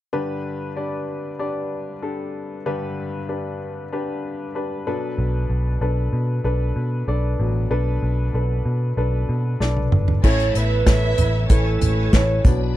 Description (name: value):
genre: piano-driven pop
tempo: 95 BPM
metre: 4/4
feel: straight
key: unclear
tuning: A4 = 437 Hz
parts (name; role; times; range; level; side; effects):
- warm upright piano; accompaniment; 0.1-12.8 s; G2 to D5; -26 LUFS; left 2 dB; none
- vintage muted picked electric bass; bass; 5.2-12.8 s; G1 to B2; -20 LUFS; equal; none
- unplugged drum kit; drums; 9.6-12.6 s; crash cymbal, hi-hat, kick drum, snare drum, toms; -18 LUFS; equal; none
- warm studio violin section; second line; 10.2-12.4 s; C#4 to E5; -29 LUFS; left 1 dB; none
- tonewheel organ; sustained chords; 10.2-12.8 s; E3 to E4; -32 LUFS; right 1 dB; chorus vibrato, slow rotary speaker
- hollow clarinet-like synth lead; melody; 10.3-12.6 s; A4 to C#5; -24 LUFS; right 5 dB; chorus
room: little or no reverb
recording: dark, warm production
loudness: -19 LUFS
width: side -14 dB against mid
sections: 0.1-10.2 A section; 10.2-12.8 B section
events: drum fill 9.6-10.2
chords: 0.1 G; 4.9 Bm7; 10.2 A